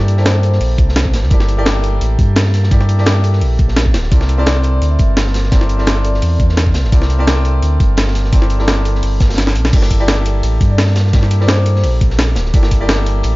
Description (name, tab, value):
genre	liquid drum and bass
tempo	171 BPM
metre	4/4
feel	straight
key	G dorian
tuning	A4 = 440 Hz
part	bright concert grand piano	accompaniment	0.0-13.4 s	Bb3 to D5	-22 LUFS	left 1 dB	digital delay
part	sub bass with octave	bass	0.0-13.4 s	D1 to G2	-14 LUFS	equal	none
part	breakbeat sampler-style drum kit	drums	0.0-13.3 s	crash cymbal, hi-hat, ride cymbal, snare drum	-19 LUFS	equal	small room ambience
part	crunchy breakbeat drum kit	drums	0.1-13.3 s	hi-hat, snare drum	-26 LUFS	equal	high-pass filter on hats, small room ambience, high-pass filter on snare, high-pass filter on room
part	vibraphone with soft mallets	melody	0.2-0.7, 4.4-6.4, 10.0-11.9 s	C5 to E5	-28 LUFS	left 2 dB	dub echo
part	electronic kick drum	drums	0.8-12.8 s	none	-12 LUFS	equal	small room ambience
room	small room ambience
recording	dark, warm production, nothing above 7.5 kHz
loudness	-11 LUFS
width	side -20 dB against mid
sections	0.0-9.7 A section; 9.7-13.4 A section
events	drop 0.0-9.7, 9.7-13.4; kick drops out 9.4-9.7; drum fill 9.4-9.7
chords	0.0 Gm69; 4.1 C13; 9.7 Gm69